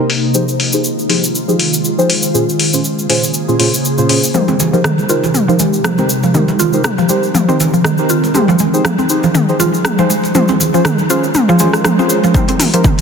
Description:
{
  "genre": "afro house",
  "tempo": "120 BPM",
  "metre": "4/4",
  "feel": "swing 56% on 16ths",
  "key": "F minor",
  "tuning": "A4 = 439 Hz",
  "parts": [
    { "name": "ethereal airy pad", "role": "sustained chords", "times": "0.0-13.0 s", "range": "C3 to C5", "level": "-18 LUFS", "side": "equal", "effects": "ensemble chorus, built-in reverb, sidechain pumping" },
    { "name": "deep mellow chord stab", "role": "stabs", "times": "0.0-12.8 s", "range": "Bb2 to C5", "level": "-17 LUFS", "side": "right 1 dB", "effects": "chorus, sidechain pumping, dub echo" },
    { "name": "deep house drum kit", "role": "drums", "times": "0.1-13.0 s", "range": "hi-hat, rim click, toms", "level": "-17 LUFS", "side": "left 2 dB", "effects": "overdrive, low-pass filter on hats, low-pass filter on toms, low-pass filter on snare" },
    { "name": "cabasa", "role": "percussion", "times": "0.3-13.0 s", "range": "none", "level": "-21 LUFS", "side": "left 1 dB", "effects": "none" },
    { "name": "mallet-like synth pluck", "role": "arpeggios", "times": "4.3-13.0 s", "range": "Eb3 to F4", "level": "-15 LUFS", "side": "equal", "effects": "chorus, sidechain pumping, dub echo" },
    { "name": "congas", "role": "percussion", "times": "4.3-13.0 s", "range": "none", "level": "-20 LUFS", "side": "right 3 dB", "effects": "none" },
    { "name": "electronic kick drum", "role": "drums", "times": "12.3-13.0 s", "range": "none", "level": "-12 LUFS", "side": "equal", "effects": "none" }
  ],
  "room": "moderate lush hall reverb, RT60 2.6 s",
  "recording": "dense, heavily limited modern master",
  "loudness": "-11 LUFS",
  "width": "side -6 dB against mid",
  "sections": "0.0-4.3 A section; 4.3-13.0 B section",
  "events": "filter sweep on synth stab 0.0-4.3; filter sweep on ambient pad 0.0-4.3; build-up 4.3-13.0; drum fill 4.3-13.0; filter sweep on synth pluck 4.3-13.0",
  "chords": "0.3 Fm7; 2.3 Bbm7; 4.3 Abmaj7; 6.3 Cm7; 8.3 Fm7; 10.3 Bbm7; 12.3 Abmaj7"
}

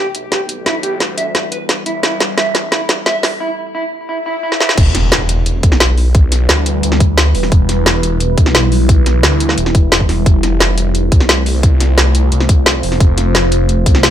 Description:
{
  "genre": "dark technical drum and bass",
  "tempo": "175 BPM",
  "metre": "4/4",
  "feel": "straight",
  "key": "E phrygian",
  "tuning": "A4 = 438 Hz",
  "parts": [
    { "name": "deep dark ambient pad", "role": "sustained chords", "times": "0.0-14.1 s", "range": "G3 to C5", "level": "-20 LUFS", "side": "equal", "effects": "chorus, built-in reverb, sidechain pumping" },
    { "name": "electric guitar at the edge of break-up", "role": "arpeggios", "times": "0.0-4.7 s", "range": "E4 to E5", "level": "-19 LUFS", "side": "right 2 dB", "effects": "sidechain pumping, ping-pong delay" },
    { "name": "phased detuned saw bass", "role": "bass", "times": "0.0-14.1 s", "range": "E1 to D2", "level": "-15 LUFS", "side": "equal", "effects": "phaser, overdrive, high-pass filter" },
    { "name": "drum and bass drum kit", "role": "drums", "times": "0.1-14.1 s", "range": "crash cymbal, hi-hat, snare drum", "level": "-14 LUFS", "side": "equal", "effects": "none" },
    { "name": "swell and impact", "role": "sound effects", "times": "4.2-6.1 s", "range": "none", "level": "-22 LUFS", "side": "equal", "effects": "none" },
    { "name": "electronic kick drum", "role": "drums", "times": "4.8-13.9 s", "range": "none", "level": "-10 LUFS", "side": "equal", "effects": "none" }
  ],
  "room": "light reverb, digital ambience",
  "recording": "high-pass filter",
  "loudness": "-11 LUFS",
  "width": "side -10 dB against mid",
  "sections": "0.0-4.8 A section; 4.8-14.1 B section",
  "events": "build-up 0.0-4.8; drum fill 0.0-3.4, 4.5; break 3.4-4.8; swell 4.2-4.8; drop 4.8-14.1; impact 4.8-6.1",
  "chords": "0.0 Em; 10.3 F"
}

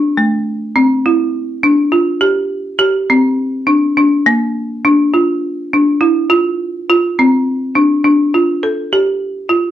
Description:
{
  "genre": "progressive instrumental, progressive",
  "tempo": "206 BPM (eighths)",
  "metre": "7/8",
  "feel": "straight",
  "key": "F major",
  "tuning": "A4 = 438 Hz",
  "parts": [
    { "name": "folk marimba with hard mallets", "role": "solo", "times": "0.0-9.7 s", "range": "A3 to A4", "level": "-11 LUFS", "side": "equal", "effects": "none" }
  ],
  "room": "moderate studio reverb, RT60 0.6 s",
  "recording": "worn, warbling old tape, cassette tape, warbly pitch drift",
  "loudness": "-11 LUFS",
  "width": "side -11 dB against mid",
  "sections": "0.0-8.3 A section; 8.3-9.7 B section",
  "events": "none",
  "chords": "none"
}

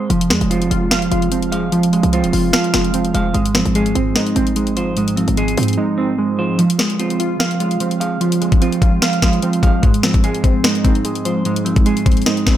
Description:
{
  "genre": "hip hop, trap",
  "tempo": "148 BPM",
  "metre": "4/4",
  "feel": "half-time",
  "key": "F minor",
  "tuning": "A4 = 440 Hz",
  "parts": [
    { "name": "semi-hollow electric guitar", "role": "arpeggios", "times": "0.0-12.6 s", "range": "F3 to F5", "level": "-19 LUFS", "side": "right 4 dB", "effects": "warbly pitch drift, low-pass filter, digital delay" },
    { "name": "warbly lo-fi synth keys", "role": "accompaniment", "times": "0.1-12.6 s", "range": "Ab2 to F5", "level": "-20 LUFS", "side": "equal", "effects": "chorus, low-pass filter" },
    { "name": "short 808-style bass", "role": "bass", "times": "0.1-5.8 s", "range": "Eb1 to Ab2", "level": "-21 LUFS", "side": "left 1 dB", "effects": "none" },
    { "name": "trap drum kit", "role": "drums", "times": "0.1-12.6 s", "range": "hi-hat, kick drum, snare drum", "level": "-17 LUFS", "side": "left 1 dB", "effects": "none" }
  ],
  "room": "digital ambience",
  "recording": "none",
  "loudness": "-14 LUFS",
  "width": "side -11 dB against mid",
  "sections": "0.0-6.6 A section; 6.6-12.6 B section",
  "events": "drums muted 5.8-6.6",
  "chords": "0.1 Fm; 3.3 Ab6; 6.6 Fm; 9.8 Ab6"
}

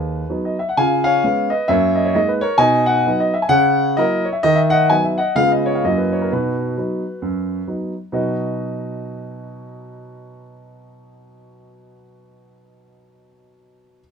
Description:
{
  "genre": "jazz, stride piano",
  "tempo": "131 BPM",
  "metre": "4/4",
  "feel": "swing 60% on 8ths",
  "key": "B major",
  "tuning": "A4 = 442 Hz",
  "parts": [
    { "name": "warm grand piano", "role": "solo", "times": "0.0-14.0 s", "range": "D#2 to G#5", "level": "-16 LUFS", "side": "equal", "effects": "none" }
  ],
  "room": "light reverb",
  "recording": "minimal, uncompressed stereo recording",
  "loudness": "-16 LUFS",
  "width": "side -6 dB against mid",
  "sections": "0.0-8.1 A section; 8.1-11.8 B section",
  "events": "none",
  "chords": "0.0 G#m7; 0.8 C#7; 1.7 F#69; 2.6 B; 3.5 F#7/C#; 4.4 B/D#; 5.4 C#7; 5.8 F#7; 6.3 B"
}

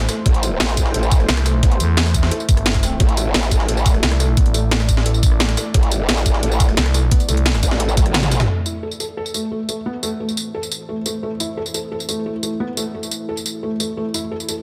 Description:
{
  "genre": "dark technical drum and bass",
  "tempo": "175 BPM",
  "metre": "4/4",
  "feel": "straight",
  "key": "A minor",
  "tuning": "A4 = 440 Hz",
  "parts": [
    { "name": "deep dark ambient pad", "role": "sustained chords", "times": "0.0-14.6 s", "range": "A3 to D5", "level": "-32 LUFS", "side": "equal", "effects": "chorus, built-in reverb, vintage 12-bit sampler grit, sidechain pumping" },
    { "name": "growling FM bass", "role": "bass", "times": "0.0-7.6 s", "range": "G1 to E2", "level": "-20 LUFS", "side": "equal", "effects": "none" },
    { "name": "drum and bass drum kit", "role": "drums", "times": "0.0-14.6 s", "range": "hi-hat, rim click, snare drum, tambourine, toms", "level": "-24 LUFS", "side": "equal", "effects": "overdrive, studio reverb" },
    { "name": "jungle sampler-style drum kit", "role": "drums", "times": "0.0-8.5 s", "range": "hi-hat, snare drum", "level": "-31 LUFS", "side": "equal", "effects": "soft clipping on snare, high-pass filter on snare, studio reverb, high-pass filter on hats, high-pass filter on room" },
    { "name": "felt-muted upright piano", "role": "arpeggios", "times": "0.1-14.5 s", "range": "A3 to A4", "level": "-29 LUFS", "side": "equal", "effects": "sidechain pumping, low-pass filter, dub echo" },
    { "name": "growl bass", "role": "bass", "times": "0.3-8.5 s", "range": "A1", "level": "-22 LUFS", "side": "equal", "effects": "chorus, overdrive, sidechain pumping" },
    { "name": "electronic kick drum", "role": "drums", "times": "0.3-8.0 s", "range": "none", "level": "-18 LUFS", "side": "equal", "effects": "studio reverb" }
  ],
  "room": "light reverb",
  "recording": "dense, heavily limited modern master",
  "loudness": "-19 LUFS",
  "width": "mono",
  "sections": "0.0-8.5 A section; 8.5-14.6 B section",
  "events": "drop 0.0-8.5; drum fill 8.0-8.5; band accent 8.1",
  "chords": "0.0 Am"
}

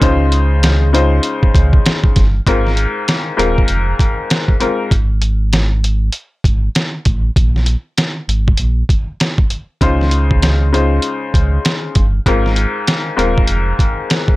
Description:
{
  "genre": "hip hop, boom-bap hip-hop",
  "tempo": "98 BPM",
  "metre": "4/4",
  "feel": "swing 62% on 16ths",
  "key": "Ab major",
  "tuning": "A4 = 440 Hz",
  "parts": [
    { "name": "bright upright piano", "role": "accompaniment", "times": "0.0-4.9, 9.8-14.3 s", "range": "Ab2 to C5", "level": "-17 LUFS", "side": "left 3 dB", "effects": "high-pass filter, low-pass filter" },
    { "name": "sub bass with octave", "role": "bass", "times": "0.0-13.7 s", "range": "Eb1 to Db2", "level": "-14 LUFS", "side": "equal", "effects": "none" },
    { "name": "trip hop sampler-style drum kit", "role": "drums", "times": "0.0-14.4 s", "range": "hi-hat, kick drum, snare drum", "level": "-14 LUFS", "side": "equal", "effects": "none" }
  ],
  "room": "little or no reverb",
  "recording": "none",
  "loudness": "-12 LUFS",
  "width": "side -19 dB against mid",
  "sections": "0.0-2.5 A section; 2.5-14.4 B section",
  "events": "break 4.9-9.8",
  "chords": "0.0 Dbmaj7; 2.5 Ab69; 7.4 Absus2; 9.8 Dbmaj7; 12.3 Ab69"
}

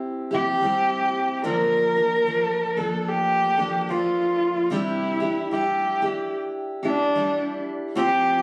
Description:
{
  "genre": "acoustic folk duo or small band",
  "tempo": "74 BPM",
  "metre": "4/4",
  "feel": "swing 62% on 8ths",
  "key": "unclear",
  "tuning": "A4 = 439 Hz",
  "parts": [
    { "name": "picked steel-string acoustic guitar", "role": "accompaniment", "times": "0.0-8.4 s", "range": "Bb2 to A4", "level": "-30 LUFS", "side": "equal", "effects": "none" },
    { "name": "dark cello", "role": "melody", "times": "0.3-8.4 s", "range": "D4 to Bb4", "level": "-24 LUFS", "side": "equal", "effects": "none" }
  ],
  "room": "light reverb",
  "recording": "recorded on a phone in the room, club ambience, compression",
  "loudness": "-23 LUFS",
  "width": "mono",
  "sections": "0.0-8.4 A section",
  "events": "none",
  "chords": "0.0 C; 1.4 Bbmaj7; 4.7 Cadd9"
}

